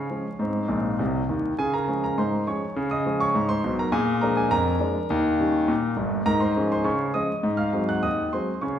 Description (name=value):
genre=ragtime piano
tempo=102 BPM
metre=2/4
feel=straight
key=Db major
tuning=A4 = 440 Hz
part: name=clear concert grand piano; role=solo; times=0.0-8.8 s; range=G1 to Gb6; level=-22 LUFS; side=equal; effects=none
room=wet recital hall reverb, RT60 1.4 s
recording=recorded in a church or concert hall, vinyl crackle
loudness=-22 LUFS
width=side -10 dB against mid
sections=0.0-1.6 A section; 1.6-8.8 B section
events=grand piano fill 0.7-1.6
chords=0.4 Ab; 1.6 Db; 3.9 Bb7; 5.1 Eb7; 6.3 Db/Ab; 7.4 Ab7